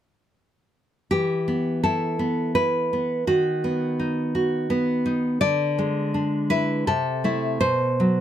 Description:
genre	romantic piece for solo classical guitar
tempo	83 BPM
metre	3/4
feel	rubato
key	unclear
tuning	A4 = 440 Hz
part	nylon-string guitar	solo	1.1-8.2 s	B2 to D5	-21 LUFS	equal	none
room	light reverb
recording	close, detailed microphones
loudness	-21 LUFS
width	side -10 dB against mid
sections	1.1-8.2 A section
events	none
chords	1.1 Em; 3.3 B/D#; 5.4 E7/D; 6.9 Am/C; 7.6 B5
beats	| 1.10 1.84 2.55 | 3.27 3.98 4.69 | 5.41 6.13 6.87 | 7.61

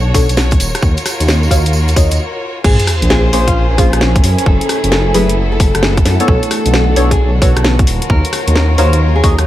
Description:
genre	UK garage, two-step garage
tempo	132 BPM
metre	4/4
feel	swing 65% on 16ths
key	unclear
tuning	A4 = 437 Hz
part	rich studio violin section	sustained chords	0.0-9.5 s	Db4 to Db5	-23 LUFS	left 1 dB	sidechain pumping
part	deep mellow chord stab	stabs	0.0-9.4 s	Gb3 to F5	-19 LUFS	left 1 dB	chorus, phaser, tape echo
part	dark detuned saw bass	bass	0.0-9.5 s	Eb1 to Gb2	-13 LUFS	equal	tube saturation
part	electronic kick drum	drums	0.1-9.4 s	none	-14 LUFS	equal	none
part	house drum kit	drums	0.1-9.4 s	crash cymbal, hi-hat, rim click, snare drum	-17 LUFS	equal	none
part	tambourine	percussion	0.1-2.2 s	none	-25 LUFS	right 5 dB	none
part	nylon-string guitar	melody	2.6-9.3 s	F4 to C5	-20 LUFS	equal	tape echo
part	sub drop	sound effects	2.6-4.5 s	none	-20 LUFS	equal	none
part	deep dark ambient pad	texture	3.6-9.5 s	D3 to Ab5	-22 LUFS	equal	chorus, built-in reverb, sidechain pumping
room	digital ambience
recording	vinyl crackle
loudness	-10 LUFS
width	side -14 dB against mid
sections	0.0-2.6 A section; 2.6-9.5 B section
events	break 2.2-2.6; drop 2.6-9.5; impact 2.6-4.5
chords	0.0 Bm9; 0.6 Ebm9; 2.6 Bbm9; 4.2 Gbm9; 6.3 Bm9; 7.9 Ebm9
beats	0.37 | 0.83 1.28 1.74 2.19 | 2.65 3.10 3.55 4.01 | 4.46 4.92 5.37 5.83 | 6.28 6.74 7.19 7.64 | 8.10 8.55 9.01 9.46

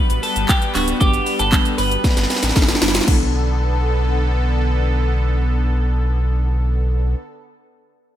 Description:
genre	dance-pop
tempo	116 BPM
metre	4/4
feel	straight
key	B minor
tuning	A4 = 440 Hz
part	twelve-string electric guitar	melody	0.0-2.5 s	F#4 to B4	-22 LUFS	equal	lush chorus, digital delay
part	glassy wavetable pluck	accompaniment	0.0-7.2 s	G3 to F#5	-25 LUFS	equal	chorus, sidechain pumping
part	soft supersaw	sustained chords	0.0-7.2 s	D3 to B4	-25 LUFS	equal	phaser, sidechain pumping
part	sub bass with octave	bass	0.1-7.1 s	D1 to B1	-19 LUFS	equal	sidechain pumping
part	house drum kit	drums	0.1-3.2 s	crash cymbal, handclaps, hi-hat, kick drum, shaker, snare drum	-17 LUFS	equal	gated reverb
room	light reverb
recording	bright 1980s-style digital production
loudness	-16 LUFS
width	side -12 dB against mid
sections	0.0-3.1 A section; 3.1-7.2 B section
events	drum fill 2.0-3.1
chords	0.0 Gmaj7; 3.1 Bm7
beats	0.49 | 1.01 1.52 2.04 2.56 | 3.08 3.59 4.11 4.63 | 5.15 5.66 6.18 6.70

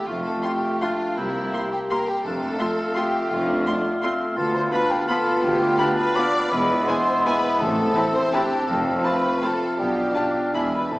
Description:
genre	classical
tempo	152-183 BPM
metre	3/4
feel	rubato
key	unclear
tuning	A4 = 441 Hz
part	mellow hollow concert flute	second line	0.0-11.0 s	D5 to D6	-27 LUFS	equal	none
part	rich studio violin section	second line	0.0-11.0 s	D4 to D5	-28 LUFS	left 1 dB	none
part	warm clarinet	second line	0.0-11.0 s	A3 to F4	-28 LUFS	equal	none
part	warm oboe	second line	0.0-11.0 s	E5 to G5	-30 LUFS	equal	none
part	warm bassoon	accompaniment	0.0-11.0 s	G#3 to D4	-31 LUFS	equal	none
part	dark French horn section	sustained chords	0.0-11.0 s	G#3 to G4	-28 LUFS	equal	none
part	rich studio cello section	bass	0.1-11.0 s	C2 to B2	-31 LUFS	equal	none
part	rich studio double bass section	bass	0.1-11.0 s	E1 to D2	-34 LUFS	right 1 dB	none
part	rich studio violin section	melody	0.4-10.6 s	G#5 to C6	-33 LUFS	left 1 dB	none
part	rich studio viola section	accompaniment	0.4-10.6 s	A3 to G4	-32 LUFS	equal	none
part	timpani	percussion	7.6-8.1, 10.9-11.0 s	A2	-35 LUFS	equal	none
room	wet concert hall reverb, RT60 2.1 s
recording	recorded in a church or concert hall, small speaker sound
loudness	-20 LUFS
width	side -20 dB against mid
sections	0.0-11.0 A section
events	none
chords	0.1 F; 1.2 C7; 2.3 F; 4.4 Bm7b5/D; 6.5 E; 7.6 Am; 8.7 F; 9.8 Bdim; 10.5 E7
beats	| 0.07 0.43 0.81 | 1.17 1.53 1.90 | 2.25 2.60 2.96 | 3.31 3.67 4.04 | 4.38 4.73 5.09 | 5.44 5.80 6.16 | 6.51 6.88 7.26 | 7.61 7.96 8.34 | 8.69 9.04 9.42 | 9.78 10.15 10.54 | 10.92

